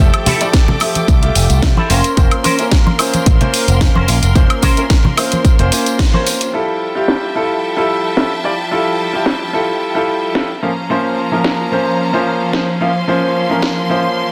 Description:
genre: nu-disco, nu disco.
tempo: 110 BPM.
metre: 4/4.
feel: straight.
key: F major.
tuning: A4 = 441 Hz.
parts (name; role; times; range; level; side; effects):
clear baby grand piano; accompaniment; 0.0-14.3 s; F3 to F5; -20 LUFS; equal; sidechain pumping, analog delay.
clear studio string section; sustained chords; 0.0-14.3 s; F3 to D6; -24 LUFS; equal; sidechain pumping.
picked electric bass with an envelope filter; bass; 0.0-5.7 s; F1 to C2; -17 LUFS; equal; sidechain pumping.
tambourine and congas; percussion; 0.0-6.5 s; none; -23 LUFS; equal; none.
house drum kit; drums; 0.1-13.7 s; hi-hat, snare drum, woodblock; -21 LUFS; equal; low-pass filter on hats, low-pass filter on snare, low-pass filter on perc, low-pass filter on room.
electric guitar with an envelope filter; riff; 0.3-6.4 s; Db4 to C5; -22 LUFS; equal; ensemble chorus, analog delay.
electronic kick drum; drums; 0.5-6.1 s; none; -14 LUFS; equal; none.
room: light reverb, digital ambience.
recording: dense, heavily limited modern master.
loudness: -14 LUFS.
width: mono.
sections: 0.0-6.5 A section; 6.5-14.3 B section.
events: band accent 6.0; filter sweep on drum 6.5-14.3.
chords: 0.0 Fmaj9; 1.9 Bbmadd9/F; 6.5 Fmaj9; 10.6 Bbmadd9/F.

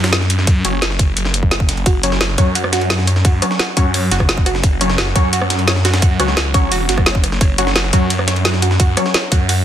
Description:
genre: dark technical drum and bass.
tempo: 173 BPM.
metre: 4/4.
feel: straight.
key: unclear.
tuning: A4 = 439 Hz.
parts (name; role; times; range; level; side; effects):
phased detuned saw bass; bass; 0.0-9.6 s; E1 to F#2; -18 LUFS; equal; phaser, tube saturation, sidechain pumping.
breakbeat sampler-style drum kit; drums; 0.0-9.6 s; hi-hat, ride cymbal, snare drum; -24 LUFS; right 1 dB; high-pass filter on snare, high-pass filter on cymbals, high-pass filter on hats, high-pass filter on room.
drum and bass drum kit; drums; 0.1-9.6 s; hi-hat, rim click, snare drum; -18 LUFS; equal; none.
electronic kick drum; drums; 0.5-9.4 s; none; -14 LUFS; equal; none.
orchestra-hit-like synth stab; stabs; 0.6-9.1 s; F#3 to C#5; -21 LUFS; left 2 dB; built-in reverb, digital delay.
analog pluck; arpeggios; 1.9-9.5 s; F#4 to C#5; -23 LUFS; right 4 dB; chorus, phaser, sidechain pumping, digital delay.
room: light reverb, digital ambience.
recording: dense, heavily limited modern master.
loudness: -13 LUFS.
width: side -10 dB against mid.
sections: 0.0-9.6 A section.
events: none.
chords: 0.0 F#5.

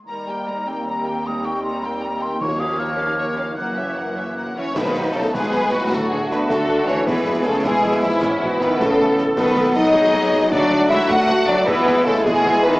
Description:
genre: cinematic, heroic adventure film score.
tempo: 104 BPM (dotted quarters).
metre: 6/8.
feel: straight.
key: Eb mixolydian, B mixolydian from 4.8 s.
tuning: A4 = 444 Hz.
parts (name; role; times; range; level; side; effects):
clear studio violin section; melody; 0.1-12.8 s; E4 to Bb5; -24 LUFS; left 1 dB; none.
clear clarinet; second line; 0.1-4.5 s; G3 to C4; -31 LUFS; equal; none.
clear symphonic violin section; second line; 0.1-12.8 s; E4 to F#5; -30 LUFS; equal; none.
mellow hollow concert flute; second line; 0.1-4.5 s; Bb5 to Gb6; -26 LUFS; equal; none.
clear symphonic viola section; accompaniment; 0.1-12.8 s; G3 to B4; -25 LUFS; equal; none.
bright trombone section; sustained chords; 0.1-12.8 s; Db3 to B3; -25 LUFS; right 1 dB; none.
mellow French horn section; sustained chords; 0.1-12.8 s; E3 to Gb4; -22 LUFS; left 1 dB; none.
clear symphonic cello section; bass; 0.1-12.8 s; Eb2 to A3; -25 LUFS; equal; none.
clear symphonic double bass section; bass; 0.1-12.7 s; Gb1 to E2; -30 LUFS; right 1 dB; none.
timpani; percussion; 2.4-5.3 s; B2 to Eb3; -31 LUFS; equal; none.
concert snare drum, clash cymbals and concert bass drum; drums; 4.8-12.8 s; none; -29 LUFS; equal; none.
room: wet recital hall reverb, RT60 1.6 s.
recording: small speaker sound.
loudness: -16 LUFS.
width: side -20 dB against mid.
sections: 0.1-4.8 A section; 4.8-12.8 B section.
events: none.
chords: 0.1 Eb; 2.4 Bbm/Eb; 3.6 Gb7; 4.8 B; 5.9 D; 7.1 E; 8.2 Aadd9; 9.4 B; 10.5 D; 11.7 E.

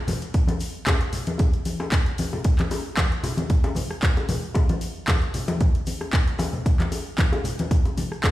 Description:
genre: nu-disco.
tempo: 114 BPM.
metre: 4/4.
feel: swing 54% on 16ths.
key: none.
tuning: none.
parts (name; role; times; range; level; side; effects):
house drum kit; drums; 0.1-8.3 s; handclaps, hi-hat, rim click; -30 LUFS; equal; overdrive.
congas, tube shaker and bongos; percussion; 0.1-8.3 s; none; -27 LUFS; left 2 dB; none.
electronic kick drum; drums; 0.3-8.3 s; none; -21 LUFS; equal; overdrive.
room: digital ambience.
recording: played on a big sound system in a bare room, stone room reverb.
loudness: -21 LUFS.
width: side -15 dB against mid.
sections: 0.0-8.3 A section.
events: none.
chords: none.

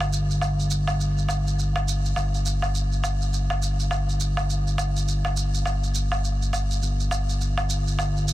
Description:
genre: organic downtempo.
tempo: 103 BPM.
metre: 4/4.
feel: swing 60% on 16ths.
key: unclear.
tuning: A4 = 440 Hz.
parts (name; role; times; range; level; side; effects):
smooth gliding synth bass; bass; 0.0-8.3 s; G1; -23 LUFS; equal; none.
woodblock and shaker; drums; 0.0-8.3 s; none; -29 LUFS; right 1 dB; none.
room: little or no reverb.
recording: dense, heavily limited modern master.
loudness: -22 LUFS.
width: side -15 dB against mid.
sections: 0.0-8.3 A section.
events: none.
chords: none.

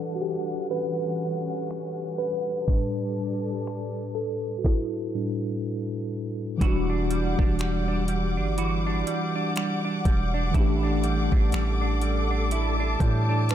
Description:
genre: contemporary R&B.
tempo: 61 BPM.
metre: 4/4.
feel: swing 58% on 16ths.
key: E dorian.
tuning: A4 = 440 Hz.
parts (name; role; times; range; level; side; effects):
mellow tine electric piano; accompaniment; 0.0-13.5 s; A2 to B4; -28 LUFS; left 1 dB; medium stereo tremolo.
warm studio string section; sustained chords; 0.0-13.5 s; E3 to D6; -32 LUFS; left 2 dB; sidechain pumping.
smooth R&B drum kit; drums; 1.7-13.5 s; finger snaps, hi-hat, kick drum, snare drum; -24 LUFS; equal; none.
semi-hollow electric guitar; arpeggios; 6.6-13.5 s; A2 to F#4; -31 LUFS; right 6 dB; analog chorus, tape echo.
long sustained 808-style bass; bass; 6.6-13.5 s; E1 to A2; -26 LUFS; equal; none.
room: digital ambience.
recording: low-pass filter.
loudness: -24 LUFS.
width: side -10 dB against mid.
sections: 0.0-6.6 A section; 6.6-13.5 B section.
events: tine electric piano solo 0.0-6.6; filter sweep 0.0-6.6.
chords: 0.0 Em9; 2.7 A7sus4; 6.6 Em9; 10.5 A7sus4.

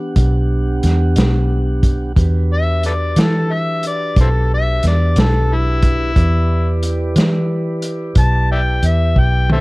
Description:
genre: slow blues.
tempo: 60 BPM (dotted quarters).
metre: 12/8.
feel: straight.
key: E minor.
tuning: A4 = 440 Hz.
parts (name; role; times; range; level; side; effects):
mellow tonewheel organ; sustained chords; 0.0-9.6 s; B3 to F#5; -24 LUFS; right 1 dB; slow rotary speaker, plate reverb.
vintage muted fingered electric bass; bass; 0.0-9.6 s; B1 to E3; -15 LUFS; equal; none.
vintage drum kit; drums; 0.2-9.6 s; hi-hat, kick drum, snare drum, toms; -16 LUFS; equal; none.
overdriven harmonica; melody; 2.5-9.6 s; C4 to A5; -20 LUFS; left 2 dB; plate reverb.
room: light reverb.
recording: dark, warm production.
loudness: -13 LUFS.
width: side -22 dB against mid.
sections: 0.0-9.6 A section.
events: harmonica solo 0.0-9.6; drum fill 9.2-9.6.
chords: 0.0 Em9.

